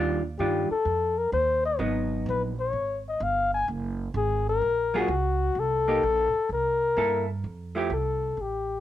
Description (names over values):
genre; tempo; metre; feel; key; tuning
jazz; 127 BPM; 4/4; swing 68% on 8ths; unclear; A4 = 441 Hz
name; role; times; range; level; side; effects
vintage hollow-body jazz guitar; accompaniment; 0.0-7.9 s; Eb3 to A4; -27 LUFS; right 1 dB; none
upright bass; bass; 0.0-8.8 s; Gb1 to G2; -31 LUFS; right 3 dB; none
breathy flugelhorn; melody; 0.4-8.8 s; Gb4 to Ab5; -25 LUFS; left 4 dB; cassette tape
room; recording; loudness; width
light reverb, small room ambience; home recording on cassette; -24 LUFS; side -12 dB against mid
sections
0.0-7.4 A section; 7.4-8.8 B section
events
flugelhorn solo 7.4-8.8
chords
0.0 Ebmaj9; 1.8 Abm7; 2.7 Fmadd9; 3.7 Gbadd9; 5.6 Cm7; 6.5 C6; 7.4 Fadd9